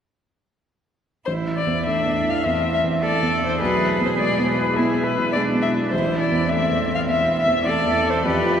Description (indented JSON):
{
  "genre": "quick classical-period movement for piano trio",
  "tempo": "103 BPM",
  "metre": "4/4",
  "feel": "straight",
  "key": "A minor",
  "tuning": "A4 = 441 Hz",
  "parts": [
    { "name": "dark violin", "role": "melody", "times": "1.3-8.6 s", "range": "G#4 to F5", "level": "-22 LUFS", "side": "left 3 dB", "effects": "none" },
    { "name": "rich cello", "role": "second line", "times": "1.3-8.6 s", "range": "C4 to A4", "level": "-24 LUFS", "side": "right 3 dB", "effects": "none" },
    { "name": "warm baby grand piano", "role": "accompaniment", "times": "1.3-8.6 s", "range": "A1 to F4", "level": "-23 LUFS", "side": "right 1 dB", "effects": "none" }
  ],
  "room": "wet cathedral reverb, RT60 5.8 s",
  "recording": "heard from further back in the room",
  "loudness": "-18 LUFS",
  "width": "side -8 dB against mid",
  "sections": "1.3-8.6 A section",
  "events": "none",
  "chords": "1.3 Am; 3.6 E7/B; 5.9 Am"
}